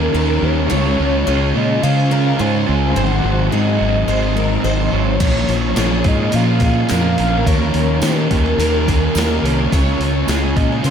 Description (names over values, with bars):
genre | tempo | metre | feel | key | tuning
rock, shoegaze and dream pop | 107 BPM | 4/4 | straight | Db major | A4 = 440 Hz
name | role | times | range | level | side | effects
mellow horn-like synth lead | melody | 0.0-10.9 s | Bb4 to Ab5 | -23 LUFS | equal | chorus, ping-pong delay
picked twelve-string acoustic guitar | arpeggios | 0.0-10.9 s | G4 to Db5 | -26 LUFS | left 2 dB | ensemble chorus, ping-pong delay
crunchy overdriven guitar | riff | 0.0-10.9 s | Ab2 to G4 | -20 LUFS | right 10 dB | reverse reverb
thick fuzz guitar | riff | 0.0-10.9 s | Ab2 to Eb4 | -21 LUFS | left 9 dB | distortion, wide subtle chorus
fingered electric bass | bass | 0.0-10.9 s | Ab1 to Eb3 | -19 LUFS | equal | none
gated 80s digital drum machine | drums | 5.2-10.9 s | crash cymbal, hi-hat, kick drum, snare drum | -20 LUFS | equal | gated reverb, gated reverb snare
tambourine | percussion | 5.8-10.4 s | none | -32 LUFS | right 11 dB | none
room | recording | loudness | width
moderate plate reverb, RT60 2.9 s | dreamy mix soaked in reverb | -14 LUFS | side -8 dB against mid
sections
0.0-10.9 A section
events
none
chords
0.0 Eb7; 0.7 Dbmaj7; 3.0 Ab7; 5.2 Bbm7; 7.5 Eb7; 9.7 Db